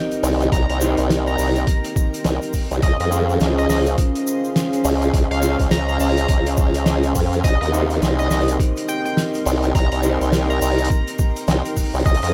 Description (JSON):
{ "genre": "glitch hop", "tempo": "104 BPM", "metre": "4/4", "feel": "swing 60% on 16ths", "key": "C phrygian", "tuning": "A4 = 439 Hz", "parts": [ { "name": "dark analog pad", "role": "sustained chords", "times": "0.0-12.3 s", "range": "C4 to F5", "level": "-28 LUFS", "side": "equal", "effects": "chorus, sidechain pumping" }, { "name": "electric guitar at the edge of break-up", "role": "stabs", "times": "0.0-10.2 s", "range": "Db4 to C5", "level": "-30 LUFS", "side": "equal", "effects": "sidechain pumping, diffuse ambient delay" }, { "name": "impact", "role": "sound effects", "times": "0.0-0.5 s", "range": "none", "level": "-55 LUFS", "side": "equal", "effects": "none" }, { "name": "granular cloud pad", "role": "texture", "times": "0.1-12.3 s", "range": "Db4 to C6", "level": "-32 LUFS", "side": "equal", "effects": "built-in reverb, sidechain pumping" }, { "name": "loose indie drum kit", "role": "drums", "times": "0.1-12.3 s", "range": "hi-hat, snare drum", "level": "-28 LUFS", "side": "equal", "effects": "none" }, { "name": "tube shaker", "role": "percussion", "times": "0.1-12.2 s", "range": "none", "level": "-37 LUFS", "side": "equal", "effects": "none" }, { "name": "formant-sweep wobble bass", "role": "bass", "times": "0.2-12.3 s", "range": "C2 to F2", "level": "-21 LUFS", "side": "equal", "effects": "chorus, tube saturation" }, { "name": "sync lead", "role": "melody", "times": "0.5-12.3 s", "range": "Eb5 to Bb5", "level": "-30 LUFS", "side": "equal", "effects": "chorus, diffuse ambient delay" }, { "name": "electronic kick drum", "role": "drums", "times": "0.5-12.2 s", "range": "none", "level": "-20 LUFS", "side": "equal", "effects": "overdrive" } ], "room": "light reverb, studio ambience", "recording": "none", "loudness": "-19 LUFS", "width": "mono", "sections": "0.0-12.3 A section", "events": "impact 0.0-0.5", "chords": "0.0 Cm7; 2.8 Dbmaj7; 7.4 Cm7", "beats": "| 0.52 1.10 1.68 2.25 | 2.83 3.40 3.98 4.56 | 5.14 5.71 6.29 6.87 | 7.44 8.02 8.60 9.18 | 9.75 10.33 10.90 11.48 | 12.06" }